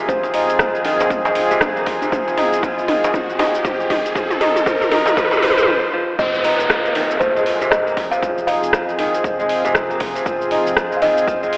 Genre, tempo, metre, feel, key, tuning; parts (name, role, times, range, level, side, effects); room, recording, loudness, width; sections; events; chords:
afro house; 118 BPM; 4/4; swing 59% on 16ths; F minor pentatonic; A4 = 440 Hz
kalimba; melody; 0.0-0.8, 6.2-11.6 s; C5 to F5; -22 LUFS; equal; low-pass filter, analog delay
warm analog pad; sustained chords; 0.0-11.6 s; F3 to Ab4; -23 LUFS; equal; chorus, vintage 12-bit sampler grit, sidechain pumping
kora; arpeggios; 0.0-11.6 s; C3 to Eb4; -19 LUFS; equal; sidechain pumping, low-pass filter, analog delay
riser and downlifter; sound effects; 1.7-10.3 s; -23 LUFS; equal
deep house drum kit; drums; 0.1-11.6 s; hi-hat, rim click, shaker, toms; -21 LUFS; equal; overdrive, studio reverb
electronic kick drum; drums; 0.1-11.4 s; -26 LUFS; equal; overdrive, studio reverb
djembe; percussion; 0.2-5.5 s; -25 LUFS; equal
smooth synth bass; bass; 6.2-11.6 s; Eb1 to F1; -39 LUFS; equal; sidechain pumping
moderate lush hall reverb, RT60 2.1 s; dry, gritty hardware recording, telephone sound; -15 LUFS; side -26 dB against mid
0.0-6.2 A section; 6.2-11.6 B section
build-up 0.0-6.2; drum fill 0.0-5.7; riser 1.7-5.7; break 5.7-6.2; drop 6.2-11.6
0.0 Fm7